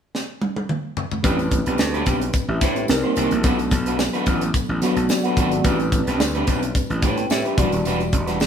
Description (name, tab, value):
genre	polished 1980s jazz-funk pop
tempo	109 BPM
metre	4/4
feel	swing 54% on 16ths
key	A dorian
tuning	A4 = 440 Hz
part	tight funk drum kit	drums	0.1-8.5 s	hi-hat, kick drum, snare drum, toms	-23 LUFS	equal	none
part	mellow tine electric piano	accompaniment	1.2-8.5 s	F#3 to G5	-24 LUFS	left 1 dB	fast stereo tremolo
part	electric guitar at the edge of break-up	riff	1.2-8.4 s	G3 to C5	-25 LUFS	right 2 dB	none
part	gritty slap bass	bass	1.2-8.5 s	D#1 to A2	-24 LUFS	equal	overdrive
part	tambourine	percussion	1.2-8.5 s	none	-39 LUFS	left 4 dB	none
room	moderate stone room reverb, RT60 1.0 s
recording	band playing live in one room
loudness	-18 LUFS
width	side -8 dB against mid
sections	0.0-1.2 A section; 1.2-8.5 B section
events	drum fill 0.1-1.2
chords	0.0 N.C.; 1.2 Am11; 2.9 Cm7; 3.4 Bm7; 5.6 Am11; 7.6 Em9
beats	0.14 0.69 | 1.24 1.79 2.34 2.89 | 3.44 3.99 4.54 5.09 | 5.65 6.20 6.75 7.30 | 7.85 8.40